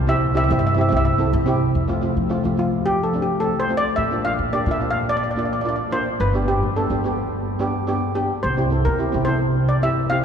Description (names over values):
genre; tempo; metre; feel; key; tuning
calypso; 108 BPM; 4/4; straight; F major; A4 = 439 Hz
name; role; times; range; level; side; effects
steel pan; melody; 0.0-10.2 s; F4 to F5; -23 LUFS; equal; none
upright bass; bass; 0.0-10.2 s; G1 to F3; -22 LUFS; equal; none
steel pan; accompaniment; 0.1-10.2 s; A3 to A4; -24 LUFS; right 1 dB; none
room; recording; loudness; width
wet cathedral reverb, RT60 6.5 s; recorded in a church or concert hall; -18 LUFS; side -7 dB against mid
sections
0.0-1.7 A section; 1.7-10.2 B section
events
steel pan solo 1.7-10.2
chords
0.0 C; 1.7 F; 4.0 Bb; 6.2 G; 8.4 C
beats
0.08 0.64 1.19 | 1.75 2.30 2.86 3.42 | 3.97 4.53 5.09 5.65 | 6.20 6.76 7.32 7.88 | 8.44 8.99 9.55 10.11